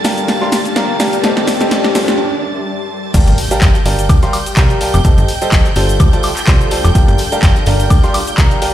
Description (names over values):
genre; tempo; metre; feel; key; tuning
piano house; 126 BPM; 4/4; swing 55% on 16ths; G minor; A4 = 439 Hz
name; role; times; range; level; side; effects
bright studio violin section; sustained chords; 0.0-8.7 s; G5 to A6; -24 LUFS; right 3 dB; sidechain pumping
clear concert grand piano; riff; 0.0-8.7 s; G3 to C6; -18 LUFS; equal; sidechain pumping, ping-pong delay
breakbeat sampler-style drum kit; drums; 0.0-8.7 s; hi-hat, snare drum; -30 LUFS; equal; none
punchy analog drum machine; drums; 0.0-8.7 s; crash cymbal, handclaps, hi-hat, shaker, snare drum, woodblock; -18 LUFS; equal; overdrive
riser and impact; sound effects; 0.0-5.0 s; none; -22 LUFS; right 1 dB; none
granular cloud pad; texture; 0.0-8.7 s; D4 to F5; -22 LUFS; left 3 dB; built-in reverb, sidechain pumping
plucky analog bass; bass; 3.1-8.5 s; F1 to D2; -14 LUFS; equal; tube saturation, sidechain pumping
electronic kick drum; drums; 3.1-8.5 s; none; -12 LUFS; equal; overdrive
tambourine; percussion; 3.1-8.7 s; none; -30 LUFS; equal; none
room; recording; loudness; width
light reverb; played on a big sound system in a bare room, stone room reverb; -10 LUFS; side -12 dB against mid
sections
0.0-3.1 A section; 3.1-8.7 B section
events
build-up 0.0-3.1; drum fill 0.0-2.2; riser 0.0-2.2; break 2.2-3.1; drop 3.1-8.7; impact 3.1-5.0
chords
0.0 Gm9; 1.2 Am7b5/G; 2.2 N.C.; 3.1 Gm9; 5.0 Am7b5/G; 6.0 Dm7; 7.0 Gm9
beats
0.29 0.76 | 1.24 1.71 2.19 2.67 | 3.14 3.62 4.09 4.57 | 5.05 5.52 6.00 6.48 | 6.95 7.43 7.91 8.38